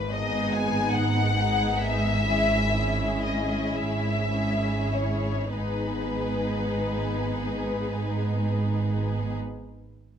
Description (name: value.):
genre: classical, slow romantic movement for string orchestra.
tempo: 31-49 BPM (dotted quarters).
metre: 6/8.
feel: rubato.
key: G# minor.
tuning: A4 = 440 Hz.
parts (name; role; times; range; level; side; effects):
rich symphonic violin section; melody; 0.0-9.4 s; B4 to G#5; -29 LUFS; left 4 dB; none.
clear symphonic double bass section; bass; 0.0-9.4 s; G#1; -31 LUFS; right 2 dB; none.
rich symphonic cello section; bass; 0.0-9.4 s; G#2; -31 LUFS; right 2 dB; none.
warm symphonic violin section; second line; 0.1-9.4 s; D#4 to G#4; -33 LUFS; left 2 dB; none.
rich chamber viola section; accompaniment; 0.1-9.4 s; G#3 to C#4; -31 LUFS; equal; none.
room: light reverb.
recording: close, detailed microphones.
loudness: -24 LUFS.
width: side -8 dB against mid.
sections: 0.0-5.5 A section; 5.5-8.9 B section.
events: slowing down 0.0-5.5.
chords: 0.0 G#m; 2.3 C#m/G#; 5.5 G#m.